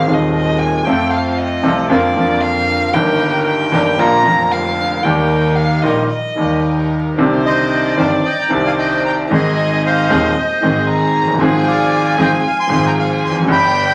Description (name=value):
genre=tango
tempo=114 BPM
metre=4/4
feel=rubato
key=Eb major, C minor from 7.2 s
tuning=A4 = 440 Hz
part: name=warm violin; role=second line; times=0.0-13.9 s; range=D5 to Bb5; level=-22 LUFS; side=equal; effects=none
part: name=clear upright piano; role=accompaniment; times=0.0-13.9 s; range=Eb1 to A4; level=-18 LUFS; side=equal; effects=none
part: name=warm studio string section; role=stabs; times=0.0-13.9 s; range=D3 to C5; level=-26 LUFS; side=equal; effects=none
part: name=clear double bass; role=bass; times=0.0-13.9 s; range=F1 to F2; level=-28 LUFS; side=equal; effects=none
part: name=bandoneon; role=melody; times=7.5-13.9 s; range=C5 to C6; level=-20 LUFS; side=equal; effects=none
room=wet large studio reverb, RT60 1.0 s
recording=vinyl crackle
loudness=-15 LUFS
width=mono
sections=0.0-7.2 A section; 7.2-13.9 B section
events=violin solo 0.0-7.2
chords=0.0 Abadd9; 0.9 F; 1.9 Bbadd9/F; 2.9 Eb/G; 4.0 Bb; 5.0 Eb; 7.2 Cmadd9; 9.3 Ab; 11.4 Fm/Ab